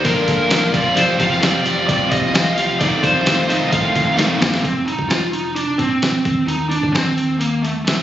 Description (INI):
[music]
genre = folk rock and heartland rock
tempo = 130 BPM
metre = 4/4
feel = straight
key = F mixolydian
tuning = A4 = 439 Hz
[part]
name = smooth overdriven lead guitar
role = melody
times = 0.0-8.0 s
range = A3 to F5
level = -19 LUFS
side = equal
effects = slapback echo
[part]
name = picked steel-string acoustic guitar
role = accompaniment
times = 0.0-4.6 s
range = F2 to A4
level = -24 LUFS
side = left 2 dB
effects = none
[part]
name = overdriven electric guitar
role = riff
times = 0.0-4.6 s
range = F2 to F4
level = -19 LUFS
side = right 1 dB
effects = none
[part]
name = lo-fi sampler-style drum kit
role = drums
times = 0.0-8.0 s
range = hi-hat, kick drum, snare drum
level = -20 LUFS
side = equal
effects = none
[part]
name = fingered electric bass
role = bass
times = 0.1-7.7 s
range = F1 to Eb2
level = -25 LUFS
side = equal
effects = none
[sound]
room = light reverb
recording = recorded on a phone in the room, studio reverb, nothing above 7.7 kHz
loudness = -15 LUFS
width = side -12 dB against mid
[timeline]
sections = 0.0-4.6 A section; 4.6-8.0 B section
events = drum fill 4.2-4.6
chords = 0.0 Bbmaj7; 0.7 Fsus2; 2.8 F7; 4.6 F5; 6.2 Cm/Eb